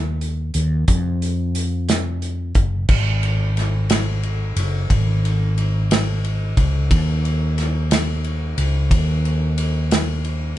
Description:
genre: six-eight pop ballad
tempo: 60 BPM (dotted quarters)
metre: 6/8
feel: straight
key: unclear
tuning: A4 = 440 Hz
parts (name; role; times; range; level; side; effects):
- mellow fretless electric bass; bass; 0.0-10.5 s; F#1 to E#2; -19 LUFS; equal; none
- loose indie drum kit; drums; 0.2-10.4 s; crash cymbal, hi-hat, kick drum, ride cymbal, snare drum; -21 LUFS; equal; none
room: light reverb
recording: band playing live in one room, nothing above 10.8 kHz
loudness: -17 LUFS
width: side -14 dB against mid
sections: 0.0-2.9 A section; 2.9-10.6 B section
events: none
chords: none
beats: | 0.88 1.89 | 2.89 3.89 | 4.90 5.90 | 6.90 7.91 | 8.91 9.91

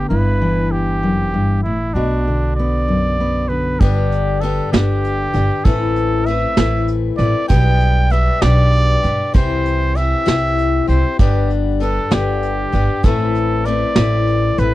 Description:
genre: indie folk with a building arrangement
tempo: 65 BPM (dotted quarters)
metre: 6/8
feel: straight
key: G major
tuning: A4 = 441 Hz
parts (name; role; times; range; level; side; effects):
- warm trumpet; melody; 0.0-14.7 s; D4 to G5; -21 LUFS; right 2 dB; none
- fingerpicked steel-string acoustic guitar; accompaniment; 0.0-5.7 s; D2 to F#4; -20 LUFS; left 1 dB; none
- upright bass; bass; 0.0-14.7 s; G1 to G2; -18 LUFS; right 1 dB; none
- picked old ladder-braced acoustic guitar; accompaniment; 3.8-14.7 s; G2 to B4; -21 LUFS; left 8 dB; none
- vintage brush drum kit; drums; 3.8-14.7 s; hi-hat, kick drum, snare drum; -14 LUFS; right 1 dB; none
room: little or no reverb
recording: dry, close 1970s-style studio recording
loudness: -14 LUFS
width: side -16 dB against mid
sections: 0.0-3.8 A section; 3.8-14.7 B section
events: none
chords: 0.1 Em/G; 2.0 Bm; 3.8 G; 5.7 Amadd9; 7.5 G/B; 9.3 C; 11.2 G; 13.0 Amadd9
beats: | 0.11 1.04 | 1.96 2.88 | 3.81 4.73 | 5.66 6.58 | 7.50 8.42 | 9.35 10.27 | 11.19 12.12 | 13.04 13.96

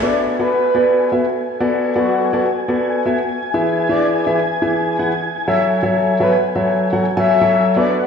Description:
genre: piano house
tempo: 124 BPM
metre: 4/4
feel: swing 55% on 16ths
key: B dorian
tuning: A4 = 444 Hz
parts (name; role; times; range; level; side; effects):
- breathy flute-like synth lead; melody; 0.0-7.9 s; F#4 to E5; -19 LUFS; left 1 dB; lush chorus, ping-pong delay
- analog string pad; sustained chords; 0.0-8.1 s; F#5 to G#6; -25 LUFS; left 2 dB; ensemble chorus
- warm concert grand piano; riff; 0.0-8.1 s; E3 to G#5; -17 LUFS; left 1 dB; ping-pong delay
- electronic hi-hat and cabasa; drums; 0.0-8.1 s; none; -34 LUFS; equal; low-pass filter on hats, low-pass filter on perc, low-pass filter on snare
room: wet lush hall reverb, RT60 2.1 s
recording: played on a big sound system in a bare room, large studio reverb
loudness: -14 LUFS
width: side -6 dB against mid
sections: 0.0-8.1 A section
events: none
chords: 0.0 Bm7; 3.7 E; 5.6 F#m7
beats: | 0.02 0.51 0.99 1.47 | 1.96 2.44 2.92 3.41 | 3.89 4.38 4.86 5.34 | 5.83 6.31 6.80 7.28 | 7.76

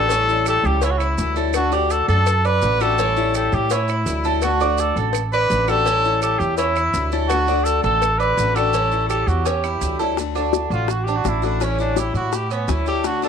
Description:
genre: latin, Cuban son and guajira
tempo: 167 BPM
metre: 4/4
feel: straight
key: D major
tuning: A4 = 440 Hz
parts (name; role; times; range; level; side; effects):
- warm trumpet; melody; 0.0-13.3 s; B3 to B4; -20 LUFS; equal; none
- picked steel-string acoustic guitar; accompaniment; 0.0-13.3 s; D3 to F#4; -25 LUFS; left 14 dB; none
- Cuban tres; arpeggios; 0.0-13.3 s; C#4 to D5; -25 LUFS; right 12 dB; none
- upright bass; bass; 0.0-13.3 s; A1 to A2; -23 LUFS; right 1 dB; none
- cowbell and bongos; percussion; 0.1-13.2 s; none; -26 LUFS; left 15 dB; none
- maracas; percussion; 0.1-13.3 s; none; -35 LUFS; right 15 dB; none
- claves; percussion; 0.5-9.8 s; none; -34 LUFS; right 14 dB; none
room: moderate spring reverb, RT60 1.3 s, small room ambience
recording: 1960s-style stereo with parts hard left and right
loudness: -17 LUFS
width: side -7 dB against mid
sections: 0.0-10.2 A section; 10.2-13.3 B section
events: trumpet solo 10.2-13.3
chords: 0.1 A7; 1.5 D; 3.0 A7; 4.4 D; 5.9 A7; 7.3 D; 8.7 A7; 10.2 D; 11.6 A7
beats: | 0.10 0.47 0.82 1.19 | 1.54 1.91 2.27 2.62 | 2.98 3.35 3.71 4.07 | 4.42 4.79 5.14 5.50 | 5.87 6.22 6.58 6.95 | 7.30 7.66 8.02 8.38 | 8.74 9.10 9.46 9.82 | 10.18 10.54 10.89 11.25 | 11.61 11.97 12.33 12.69 | 13.05

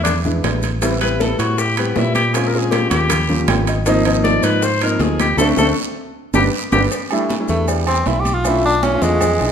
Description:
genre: Afro-Cuban jazz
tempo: 157 BPM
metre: 4/4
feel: straight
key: unclear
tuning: A4 = 443 Hz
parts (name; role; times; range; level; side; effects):
- clear tenor saxophone; second line; 0.0-6.8 s; B3 to D5; -20 LUFS; left 3 dB; none
- warm grand piano; accompaniment; 0.0-9.5 s; F3 to G5; -20 LUFS; equal; none
- fingered electric bass; bass; 0.0-9.5 s; G1 to Bb2; -20 LUFS; equal; none
- timbales and agogo bells; percussion; 0.0-9.5 s; none; -25 LUFS; right 8 dB; none
- bongos and cowbell; percussion; 0.1-9.4 s; none; -28 LUFS; left 4 dB; none
- congas; percussion; 0.1-9.5 s; none; -26 LUFS; left 2 dB; none
- guiro; percussion; 0.1-9.5 s; none; -32 LUFS; right 7 dB; none
- maracas; percussion; 0.1-9.5 s; none; -33 LUFS; left 6 dB; none
- bright tenor saxophone; melody; 7.5-9.5 s; G3 to G4; -18 LUFS; equal; none
room: moderate large studio reverb, RT60 1.3 s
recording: minimal, uncompressed stereo recording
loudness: -14 LUFS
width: side -8 dB against mid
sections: 0.0-6.9 A section; 6.9-9.5 A section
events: tenor saxophone solo 0.0-6.9, 6.9-9.5; grand piano fill 3.3-3.9; drum fill 5.4-6.9; band accent 5.4-6.9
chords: 0.1 E7; 0.8 Am7; 2.3 Bbm7; 3.1 Eb7; 3.9 Ab6; 5.4 D5; 6.2 G; 6.9 A9sus4; 8.4 Bm7b5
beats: 0.06 0.44 | 0.82 1.20 1.58 1.96 | 2.35 2.73 3.11 3.49 | 3.87 4.25 4.63 5.01 | 5.39 5.78 6.16 6.54 | 6.92 7.30 7.68 8.06 | 8.44 8.82 9.21

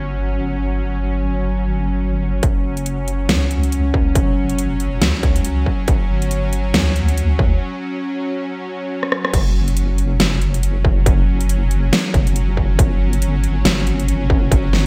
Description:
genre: deep dubstep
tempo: 139 BPM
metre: 4/4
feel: swing 58% on 16ths, half-time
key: unclear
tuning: A4 = 440 Hz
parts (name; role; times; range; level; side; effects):
- bowed-like drone; sustained chords; 0.0-14.9 s; F#3 to C#4; -26 LUFS; equal; built-in reverb
- deep soft wobble bass; bass; 0.0-14.9 s; F#1 to D2; -21 LUFS; equal; chorus
- dubstep drum kit; drums; 2.4-14.8 s; crash cymbal, hi-hat, rim click, snare drum; -22 LUFS; equal; gated reverb
- electronic kick drum; drums; 2.4-14.6 s; none; -19 LUFS; equal; distortion
room: light reverb, digital ambience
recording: bright 1980s-style digital production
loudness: -18 LUFS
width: mono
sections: 0.0-2.4 A section; 2.4-9.3 B section; 9.3-14.9 C section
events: filter sweep on synth drone 0.0-2.4; build-up 2.4-9.3; break 7.6-9.3; drum fill 9.0-9.3; drop 9.3-14.9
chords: 0.0 F#5; 5.9 G5; 9.3 F#5; 12.8 G5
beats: 0.27 | 0.70 1.13 1.57 2.00 | 2.43 2.86 3.29 3.72 | 4.16 4.59 5.02 5.45 | 5.88 6.31 6.75 7.18 | 7.61 8.04 8.47 8.90 | 9.34 9.77 10.20 10.63 | 11.06 11.49 11.93 12.36 | 12.79 13.22 13.65 14.08 | 14.52

